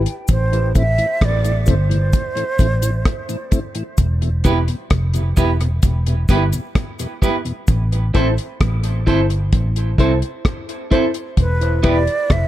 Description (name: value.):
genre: dub reggae.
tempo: 65 BPM.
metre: 4/4.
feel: straight.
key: A minor.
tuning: A4 = 440 Hz.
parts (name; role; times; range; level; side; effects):
vintage muted fingered electric bass; bass; 0.0-12.5 s; E1 to C2; -18 LUFS; equal; none.
deep reggae drum kit; drums; 0.1-12.5 s; hi-hat, kick drum, rim click; -18 LUFS; equal; none.
breathy concert flute; melody; 0.3-3.5, 11.4-12.5 s; B4 to E5; -23 LUFS; right 3 dB; dub echo.
cabasa; percussion; 0.3-7.9 s; none; -34 LUFS; left 3 dB; none.
mellow tonewheel organ; accompaniment; 0.5-7.5 s; E2 to E4; -28 LUFS; left 2 dB; slow rotary speaker, dub echo.
clean electric guitar; accompaniment; 4.4-12.0 s; B3 to C5; -23 LUFS; right 5 dB; dub echo.
reed electric piano; stabs; 8.1-12.0 s; E4 to C5; -24 LUFS; left 4 dB; dub echo.
room: little or no reverb.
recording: dark, warm production.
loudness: -15 LUFS.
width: side -14 dB against mid.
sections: 0.0-12.5 A section.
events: break 0.0-4.0; part muted 7.7-12.5.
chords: 0.3 Am; 4.0 Em; 7.7 Am; 11.4 Em.